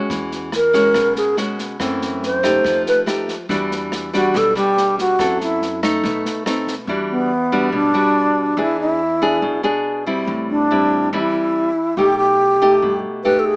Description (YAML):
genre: bossa nova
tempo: 142 BPM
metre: 4/4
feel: straight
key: E minor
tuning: A4 = 441 Hz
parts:
  - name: nylon-string guitar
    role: accompaniment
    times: 0.0-13.6 s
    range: F#2 to A4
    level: -20 LUFS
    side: equal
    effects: none
  - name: upright bass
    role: bass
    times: 0.1-13.0 s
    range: A1 to G2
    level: -30 LUFS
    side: equal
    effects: none
  - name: open jazz drum kit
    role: drums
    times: 0.1-6.7 s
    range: kick drum, rim click, snare drum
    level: -28 LUFS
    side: equal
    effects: none
  - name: bright wooden-headed alto flute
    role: melody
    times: 0.6-13.6 s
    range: B3 to C5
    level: -16 LUFS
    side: equal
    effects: none
room: light reverb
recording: small speaker sound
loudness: -15 LUFS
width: side -28 dB against mid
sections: 0.0-6.9 A section; 6.9-13.6 B section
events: alto flute solo 0.0-6.9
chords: 0.1 E69; 1.8 F#m7b5; 2.6 F9; 3.5 Em9; 5.2 F#m7b5; 6.0 B7b9; 6.9 Em9; 8.6 E7; 10.3 Am7; 12.0 Baug7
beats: | 0.10 0.52 0.95 1.37 | 1.80 2.22 2.64 3.07 | 3.49 3.92 4.34 4.76 | 5.19 5.61 6.04 6.46 | 6.88 7.31 7.73 8.16 | 8.58 9.00 9.43 9.85 | 10.28 10.70 11.12 11.55 | 11.97 12.40 12.82 13.25